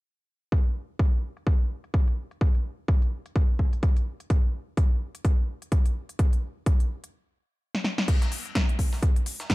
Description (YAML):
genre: house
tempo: 127 BPM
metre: 4/4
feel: swing 58% on 16ths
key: none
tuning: none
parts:
  - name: big-room dance drum kit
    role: drums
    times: 0.5-9.5 s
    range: crash cymbal, hi-hat, shaker, snare drum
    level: -30 LUFS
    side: left 1 dB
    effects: overdrive, low-pass filter on hats, low-pass filter on snare, low-pass filter on cymbals, low-pass filter on perc
  - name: electronic kick drum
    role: drums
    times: 0.5-9.5 s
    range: none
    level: -22 LUFS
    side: equal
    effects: overdrive
  - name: breakbeat sampler-style drum kit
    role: drums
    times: 8.1-9.5 s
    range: hi-hat, snare drum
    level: -40 LUFS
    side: equal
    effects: sidechain pumping on hats, high-pass filter on hats, high-pass filter on snare
room: digital ambience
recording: dark, warm production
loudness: -23 LUFS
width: side -21 dB against mid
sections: 0.5-8.1 A section; 8.1-9.5 B section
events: stop 7.1-8.1; drum fill 7.7-8.1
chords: none